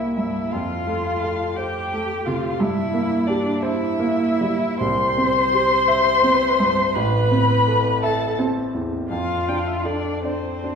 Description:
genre	classical, slow romantic movement for piano quartet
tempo	56 BPM (dotted quarters)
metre	6/8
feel	uneven beats, rubato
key	C major from 4.8 s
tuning	A4 = 440 Hz
part	muted violin	melody	0.0-10.8 s	C5 to C6	-24 LUFS	left 5 dB	none
part	muted cello	second line	0.0-10.8 s	C4 to C5	-25 LUFS	right 5 dB	none
part	muted violin	second line	0.0-10.8 s	C4 to C5	-27 LUFS	left 2 dB	none
part	warm grand piano	accompaniment	0.0-10.8 s	A1 to E5	-22 LUFS	equal	none
room	wet recital hall reverb, RT60 1.7 s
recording	recorded in a church or concert hall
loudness	-18 LUFS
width	side -6 dB against mid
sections	0.0-10.8 A section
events	none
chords	0.0 C7; 0.5 F; 2.6 C7/G; 4.8 C; 7.0 Am; 9.1 Dm/F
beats	| 0.52 1.57 | 2.61 3.62 | 4.81 5.87 | 6.95 8.03 | 9.10 10.25

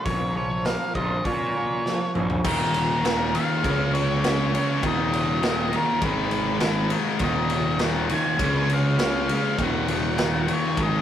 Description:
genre	quiet-loud alternative rock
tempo	101 BPM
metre	4/4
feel	straight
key	unclear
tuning	A4 = 445 Hz
part	octave-fuzz lead guitar	melody	0.0-11.0 s	Bb4 to Ab5	-28 LUFS	equal	distortion
part	twangy electric guitar	arpeggios	0.0-2.5 s	Bb2 to F4	-31 LUFS	right 4 dB	tremolo
part	fuzz picked electric bass	bass	0.1-11.0 s	Eb1 to Bb2	-28 LUFS	equal	overdrive
part	raw garage drum kit	drums	0.1-10.9 s	crash cymbal, hi-hat, kick drum, ride cymbal, snare drum, toms	-27 LUFS	equal	none
part	fuzz guitar	riff	2.4-11.0 s	Eb2 to Db4	-28 LUFS	right 3 dB	distortion
part	high-gain distorted guitar	riff	2.4-11.0 s	Eb2 to Db4	-26 LUFS	left 5 dB	distortion
room	moderate studio reverb, RT60 0.6 s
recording	rough rehearsal-room recording, warm saturation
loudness	-21 LUFS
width	side -10 dB against mid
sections	0.0-2.4 A section; 2.4-11.0 B section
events	drum fill 1.9-2.4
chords	0.1 Bbm; 2.4 Eb5; 3.6 Db5; 4.8 Eb5; 6.0 Abm; 7.2 Eb5; 8.4 Db5; 9.6 Ebm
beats	| 0.06 0.66 1.25 1.85 | 2.45 3.04 3.64 4.23 | 4.83 5.42 6.02 6.61 | 7.21 7.80 8.40 8.99 | 9.59 10.18 10.77

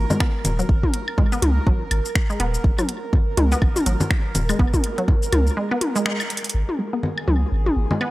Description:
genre	minimal techno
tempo	123 BPM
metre	4/4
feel	swing 59% on 16ths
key	unclear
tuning	A4 = 439 Hz
part	punchy sub bass	bass	0.0-7.9 s	D#1 to C#2	-21 LUFS	equal	sidechain pumping
part	bubbling stepped-filter texture	texture	0.0-8.1 s	G#4 to A#4	-32 LUFS	right 3 dB	chorus, built-in reverb, sidechain pumping
part	resonant blip pluck	riff	0.1-8.0 s	F#3 to B3	-27 LUFS	equal	chorus, sidechain pumping, tape echo
part	house drum kit	drums	0.1-6.6 s	finger snaps, hi-hat, shaker	-27 LUFS	equal	none
part	electronic congas, woodblock and toms	percussion	0.1-8.1 s	none	-25 LUFS	left 1 dB	tape echo
part	electronic kick drum	drums	0.2-5.2 s	none	-19 LUFS	equal	none
room	light reverb, digital ambience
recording	dry, gritty hardware recording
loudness	-18 LUFS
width	side -18 dB against mid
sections	0.0-6.5 A section; 6.5-8.1 B section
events	break 5.6-6.5; band accent 6.1; drum fill 6.3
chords	none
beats	0.20 | 0.69 1.18 1.67 2.15 | 2.64 3.13 3.62 4.11 | 4.59 5.08 5.57 6.06 | 6.54 7.03 7.52 8.01

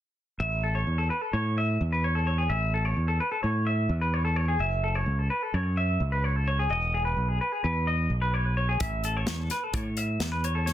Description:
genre	math rock and midwest emo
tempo	257 BPM (eighths)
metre	9/8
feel	straight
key	A lydian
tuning	A4 = 436 Hz
part	clean electric guitar	arpeggios	0.4-10.7 s	G#4 to E5	-29 LUFS	left 1 dB	slapback echo, plate reverb
part	growling fingered electric bass	bass	0.4-10.7 s	E1 to A2	-27 LUFS	equal	overdrive
part	modern studio drum kit	drums	8.8-10.7 s	hi-hat, kick drum, snare drum	-32 LUFS	left 1 dB	none
room	light reverb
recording	dense, heavily limited modern master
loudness	-25 LUFS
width	side -12 dB against mid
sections	0.4-10.7 A section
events	none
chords	0.4 A; 4.6 F#m7; 6.7 Emaj7; 8.8 A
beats	| 0.40 0.64 0.87 1.10 1.34 1.57 1.80 2.04 2.27 | 2.50 2.74 2.97 3.20 3.44 3.67 3.90 4.13 4.37 | 4.60 4.83 5.07 5.30 5.54 5.77 6.00 6.24 6.47 | 6.70 6.93 7.17 7.40 7.63 7.87 8.10 8.34 8.57 | 8.80 9.04 9.27 9.50 9.74 9.97 10.20 10.44 10.67

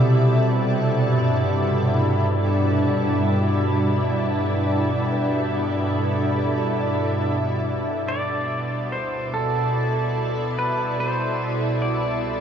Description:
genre	ambient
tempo	72 BPM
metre	4/4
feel	straight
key	G major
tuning	A4 = 440 Hz
part	soft additive organ-like pad	sustained chords	0.0-12.4 s	G2 to D5	-20 LUFS	equal	ensemble chorus, built-in reverb
part	soft synth bell	arpeggios	0.0-8.1 s	D4 to A5	-38 LUFS	left 1 dB	none
part	analog drone	drone	0.0-12.4 s	G3 to A4	-34 LUFS	equal	none
part	deep rumbling drone	bass	9.0-12.4 s	C2 to D2	-44 LUFS	equal	none
part	pedal steel guitar	melody	8.1-12.4 s	A4 to D5	-26 LUFS	equal	none
room	wet shimmer reverb, RT60 7.2 s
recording	worn, warbling old tape, cassette tape, warbly pitch drift, small room ambience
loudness	-20 LUFS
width	side -8 dB against mid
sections	0.0-7.6 A section; 7.6-12.4 B section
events	none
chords	0.0 C6; 1.0 G; 7.6 Dsus2; 11.0 Cmaj9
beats	0.18 | 1.01 1.83 2.65 3.48 | 4.30 5.12 5.96 6.80 | 7.65 8.49 9.33 10.17 | 11.00 11.82

